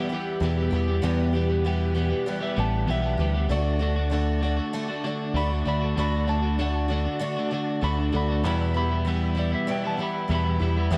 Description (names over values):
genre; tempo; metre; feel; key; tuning
rock; 97 BPM; 4/4; straight; E minor; A4 = 440 Hz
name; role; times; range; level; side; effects
picked twelve-string acoustic guitar; accompaniment; 0.0-11.0 s; E2 to G4; -32 LUFS; equal; none
tonewheel organ; sustained chords; 0.0-11.0 s; F#4 to B5; -42 LUFS; equal; slow rotary speaker, chorus vibrato
twelve-string electric guitar; riff; 0.0-11.0 s; E2 to G4; -31 LUFS; equal; spring reverb
picked electric bass; bass; 0.4-11.0 s; A1 to E2; -27 LUFS; equal; none
clean lap steel guitar; second line; 2.3-10.9 s; B4 to B5; -35 LUFS; equal; analog delay
room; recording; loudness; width
little or no reverb; dark, warm production; -25 LUFS; mono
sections
0.0-11.0 A section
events
electric slide guitar solo 0.0-11.0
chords
0.0 Em; 3.5 D; 8.4 Em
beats
0.42 | 1.03 1.65 2.27 2.88 | 3.50 4.12 4.73 5.35 | 5.97 6.59 7.21 7.82 | 8.44 9.06 9.68 10.30 | 10.92